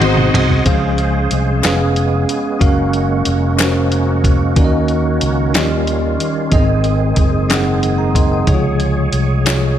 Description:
slow gospel; 61 BPM (dotted quarters); 6/8; straight; Db major; A4 = 441 Hz
dark studio string section; melody; 0.0-0.6 s; Eb4 to C5; -21 LUFS; left 1 dB; tape echo
bell-like tine electric piano; accompaniment; 0.0-9.8 s; Ab2 to Eb6; -18 LUFS; left 1 dB; medium stereo tremolo
bright tonewheel organ; sustained chords; 0.0-9.8 s; Eb3 to C6; -21 LUFS; right 4 dB; fast rotary speaker, chorus vibrato
fingered electric bass; bass; 0.0-9.8 s; F1 to Eb2; -17 LUFS; equal
lo-fi sampler-style drum kit; drums; 0.0-9.6 s; hi-hat, kick drum, ride cymbal, snare drum, toms; -17 LUFS; equal
group handclap; percussion; 1.6-9.8 s; -24 LUFS; left 7 dB
light reverb; -12 LUFS; side -10 dB against mid
0.7-9.8 A section
drum fill 0.0-0.7
0.0 Ab7; 0.7 Dbmaj7; 1.6 Db7/F; 2.6 Gbmaj7; 4.6 Ebm7; 5.5 Eb9; 6.5 Ab; 8.5 Dbmaj7

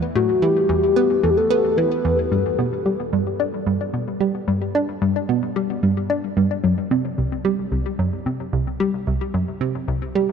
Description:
ambient; 111 BPM; 4/4; straight; A4 = 440 Hz
soft octave-layered synth lead; melody; 0.2-2.2 s; F#4 to B4; -21 LUFS; left 2 dB; chorus, ping-pong delay
analog pluck; riff; 0.2-10.3 s; C2 to D4; -20 LUFS; right 1 dB; chorus, ping-pong delay
wet huge ambient reverb, RT60 8.6 s; -18 LUFS; side -6 dB against mid
0.0-2.3 A section; 2.3-10.3 B section
0.0 Em; 2.3 G; 6.6 C5

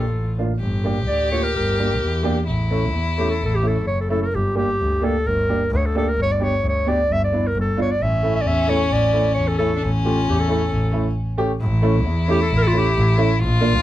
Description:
klezmer; 131 BPM; 2/4; straight; A phrygian dominant; A4 = 440 Hz
warm clarinet; melody; 0.0-13.2 s; F4 to E5; -22 LUFS; equal
rich violin; second line; 0.0-4.1, 8.0-13.8 s; C#4 to G4; -25 LUFS; left 4 dB
warm upright piano; accompaniment; 0.0-13.7 s; A3 to G4; -24 LUFS; right 2 dB
clear double bass; bass; 0.0-13.8 s; F#1 to E2; -21 LUFS; equal
light reverb; dark, warm production; -17 LUFS; side -14 dB against mid
0.0-4.3 A section; 4.3-11.6 B section; 11.6-13.8 A section
speeding up 0.0-13.8
0.0 Bb; 0.6 Gm; 2.5 A; 4.3 Gm; 6.2 G; 8.0 A

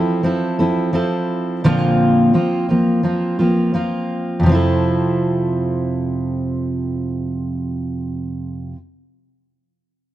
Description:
pop; 86 BPM; 4/4; swing 55% on 16ths; F major; A4 = 441 Hz
fingerpicked steel-string acoustic guitar; accompaniment; 0.0-8.8 s; F2 to A4; -16 LUFS; right 1 dB
moderate studio ambience, RT60 0.5 s; dark, warm production; -16 LUFS; side -13 dB against mid
0.0-4.4 A section; 4.4-7.2 B section
0.0 Fmaj7; 1.6 Bbadd9; 4.4 Fmaj7

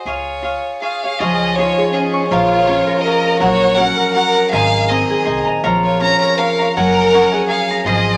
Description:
mexican folk, mariachi; 162 BPM; 3/4; straight; Db major; A4 = 439 Hz
bright violin; melody; 0.0-8.2 s; Ab4 to Bb5; -21 LUFS; equal
cavaquinho; accompaniment; 0.0-8.2 s; F4 to Bb5; -22 LUFS; equal
upright bass; bass; 0.1-8.2 s; Gb1 to Db2; -28 LUFS; equal
warm studio violin section; second line; 0.8-8.2 s; Db4 to Db5; -21 LUFS; equal
Celtic harp; arpeggios; 1.2-8.2 s; Eb3 to Db6; -21 LUFS; equal
wet small room reverb, RT60 0.5 s; -15 LUFS; mono
0.0-1.2 A section; 1.2-8.2 B section
0.1 Db; 1.2 Dbadd9; 2.3 Bbm; 3.4 Gb/Bb; 4.5 Abadd9; 5.6 Bbm; 6.8 Gbadd9

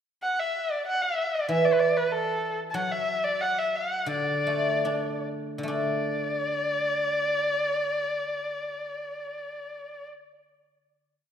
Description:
chinese traditional, Chinese chamber ensemble; 64-96 BPM; 2/4; rubato; D gong mode; A4 = 440 Hz
dark erhu; melody; 0.2-10.1 s; A4 to A5; -27 LUFS; left 1 dB
guzheng; accompaniment; 1.5-11.3 s; D3 to D4; -28 LUFS; right 2 dB
moderate recital hall reverb, RT60 1.7 s; -25 LUFS; side -8 dB against mid
0.2-5.7 A section; 5.7-9.3 final chord
slowing down 2.8-5.7

